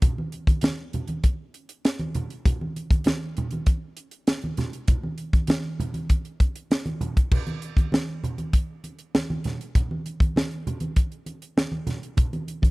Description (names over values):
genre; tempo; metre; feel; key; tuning
soul; 99 BPM; 4/4; straight; none; none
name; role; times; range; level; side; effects
tight funk drum kit; drums; 0.0-12.7 s; crash cymbal, hi-hat, kick drum, snare drum; -21 LUFS; equal; none
congas; percussion; 0.0-12.7 s; none; -30 LUFS; right 2 dB; none
room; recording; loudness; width
studio reverb; dry, close 1970s-style studio recording; -23 LUFS; side -23 dB against mid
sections
0.0-7.3 A section; 7.3-12.7 B section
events
none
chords
none